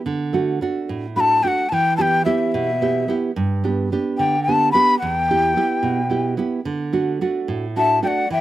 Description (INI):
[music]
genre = andean folk, Andean ensemble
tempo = 73 BPM (dotted quarters)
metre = 6/8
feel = straight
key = unclear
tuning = A4 = 440 Hz
[part]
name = nylon-string guitar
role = accompaniment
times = 0.1-8.4 s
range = E2 to G4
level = -21 LUFS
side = right 4 dB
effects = slapback echo
[part]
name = breathy large quena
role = melody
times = 1.2-8.4 s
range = E5 to B5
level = -18 LUFS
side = left 2 dB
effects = none
[part]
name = breathy mellow large pan pipes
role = second line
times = 7.8-8.4 s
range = D5 to E5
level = -24 LUFS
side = left 6 dB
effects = slapback echo
[sound]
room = little or no reverb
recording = recorded outdoors, with no room sound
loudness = -17 LUFS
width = side -14 dB against mid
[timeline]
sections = 0.1-8.4 A section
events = none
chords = 0.1 D; 1.7 Em; 3.3 G; 5.0 Em; 6.6 D